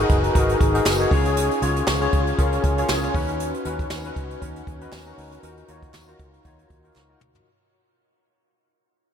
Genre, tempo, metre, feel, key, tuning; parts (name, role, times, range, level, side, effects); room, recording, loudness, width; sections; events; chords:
1980s-style pop; 118 BPM; 4/4; swing 55% on 16ths; Eb minor; A4 = 441 Hz
bright tine electric piano; accompaniment; 0.0-7.5 s; Db4 to Db5; -23 LUFS; left 2 dB; ensemble chorus
vintage muted fingered electric bass; bass; 0.0-7.4 s; Gb1 to D#2; -27 LUFS; right 1 dB
jazz brush drum kit; drums; 0.1-7.5 s; hi-hat, kick drum, snare drum, tambourine, toms; -23 LUFS; right 1 dB
group handclap; percussion; 0.9-7.1 s; barely audible
moderate huge ambient reverb, RT60 8.7 s; dreamy mix soaked in reverb; -19 LUFS; side -8 dB against mid
0.0-7.5 A section
fade-out 0.0-7.5; drum fill 7.0-7.5
0.0 Abm7; 1.1 Db; 3.1 Badd9; 5.4 Ebmadd9